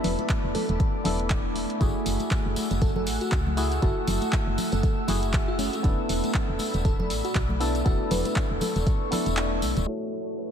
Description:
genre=deep house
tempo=119 BPM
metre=4/4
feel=swing 57% on 16ths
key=F# minor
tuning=A4 = 440 Hz
part: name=bell-like FM electric piano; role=melody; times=0.0-9.1 s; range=C#4 to B4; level=-35 LUFS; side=equal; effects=chorus, tape echo
part: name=deep dark ambient pad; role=sustained chords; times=0.0-10.5 s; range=A3 to E6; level=-32 LUFS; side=right 1 dB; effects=chorus, built-in reverb, sidechain pumping
part: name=percussive organ stab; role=stabs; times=0.0-10.5 s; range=A3 to A4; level=-31 LUFS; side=left 1 dB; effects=chorus, sidechain pumping, tape echo
part: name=woody FM bass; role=bass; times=0.0-9.9 s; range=D1 to C#2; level=-29 LUFS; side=equal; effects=sidechain pumping
part: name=punchy analog drum machine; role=drums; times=0.0-9.9 s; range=handclaps, hi-hat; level=-34 LUFS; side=right 1 dB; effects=low-pass filter on hats, low-pass filter on cymbals, low-pass filter on snare, low-pass filter on room
part: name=congas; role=percussion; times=0.0-9.7 s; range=none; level=-35 LUFS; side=left 2 dB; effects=sidechain pumping on perc
part: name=electronic kick drum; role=drums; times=0.3-9.0 s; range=none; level=-25 LUFS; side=equal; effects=none
part: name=tambourine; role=percussion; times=1.8-9.9 s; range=none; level=-40 LUFS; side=left 5 dB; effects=none
part: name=warm velvety synth lead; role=melody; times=9.9-10.5 s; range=B4 to C#5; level=-39 LUFS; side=left 1 dB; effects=chorus, ping-pong delay
room=moderate cathedral reverb, RT60 6.6 s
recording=dreamy mix soaked in reverb, low-pass filter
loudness=-23 LUFS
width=side -8 dB against mid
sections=0.0-9.9 A section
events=kick drops out 9.4-9.9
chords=0.0 E7sus4; 1.8 F#m9; 5.8 E7sus4; 9.9 F#m9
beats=0.29 0.80 1.30 | 1.81 2.31 2.82 3.32 | 3.82 4.33 4.83 5.34 | 5.84 6.34 6.85 7.35 | 7.86 8.36 8.87 9.37 | 9.88 10.38

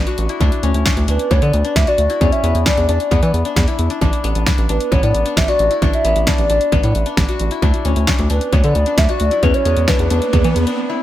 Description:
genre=synth-pop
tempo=133 BPM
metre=4/4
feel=straight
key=unclear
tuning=A4 = 438 Hz
part: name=hollow clarinet-like synth lead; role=melody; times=0.0-11.0 s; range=B4 to E5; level=-19 LUFS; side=equal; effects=chorus, analog delay
part: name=qanun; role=arpeggios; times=0.0-11.0 s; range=B3 to F#4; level=-22 LUFS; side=left 6 dB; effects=analog delay
part: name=round analog bass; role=bass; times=0.0-10.7 s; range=A1 to E3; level=-17 LUFS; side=equal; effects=none
part: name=downlifter and riser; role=sound effects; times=0.0-0.4, 9.3-10.8 s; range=none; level=-27 LUFS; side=right 2 dB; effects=none
part: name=house drum kit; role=drums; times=0.1-10.8 s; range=hi-hat, kick drum, snare drum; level=-17 LUFS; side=equal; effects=analog delay
room=light reverb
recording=echo-heavy mix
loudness=-13 LUFS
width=side -13 dB against mid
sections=0.0-11.0 A section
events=riser 9.3-11.0; break 10.8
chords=0.4 D; 2.2 E5; 4.0 Asus4; 7.6 D; 9.4 E5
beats=| 0.41 0.86 1.31 1.76 | 2.21 2.66 3.11 3.56 | 4.02 4.47 4.92 5.37 | 5.82 6.27 6.72 7.17 | 7.62 8.08 8.53 8.98 | 9.43 9.88 10.33 10.78

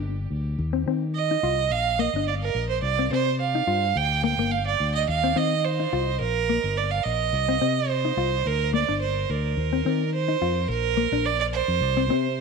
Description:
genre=highlife guitar band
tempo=107 BPM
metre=4/4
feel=straight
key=Bb major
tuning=A4 = 441 Hz
part: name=mellow electric guitar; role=accompaniment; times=0.0-12.3 s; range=Bb3 to F4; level=-28 LUFS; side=left 12 dB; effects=none
part: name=fingered electric bass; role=bass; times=0.0-12.4 s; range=G1 to Eb3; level=-27 LUFS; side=left 2 dB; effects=none
part: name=clear fiddle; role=melody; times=1.2-12.4 s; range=Bb4 to G5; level=-24 LUFS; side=right 10 dB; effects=tape echo
room=moderate echo chamber reverb, RT60 1.3 s, studio reverb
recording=1960s-style stereo with parts hard left and right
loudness=-22 LUFS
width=side -4 dB against mid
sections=0.0-10.7 A section; 10.7-12.4 B section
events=none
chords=0.0 N.C.; 0.6 Cmadd11; 1.7 Bb; 2.8 C5; 4.0 Bb; 5.1 Cmadd11; 6.2 Gm; 7.3 Cm; 8.4 Bb; 9.6 Eb5; 10.7 Bb; 11.8 N.C.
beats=0.02 0.59 1.15 | 1.71 2.27 2.83 3.40 | 3.96 4.52 5.08 5.64 | 6.21 6.77 7.33 7.89 | 8.45 9.01 9.57 10.13 | 10.69 11.25 11.81 12.37

